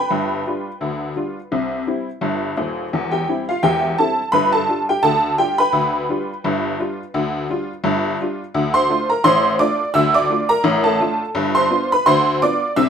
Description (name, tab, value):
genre	ragtime piano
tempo	85 BPM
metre	2/4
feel	swing 56% on 16ths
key	unclear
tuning	A4 = 440 Hz
part	honky-tonk upright piano	solo	0.0-12.9 s	Eb1 to E6	-16 LUFS	equal	none
room	light reverb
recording	minimal, uncompressed stereo recording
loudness	-16 LUFS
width	side -7 dB against mid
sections	0.0-12.9 A section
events	none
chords	0.1 G7; 1.5 C; 2.9 C/E; 4.3 G7; 8.5 Dm; 11.4 G7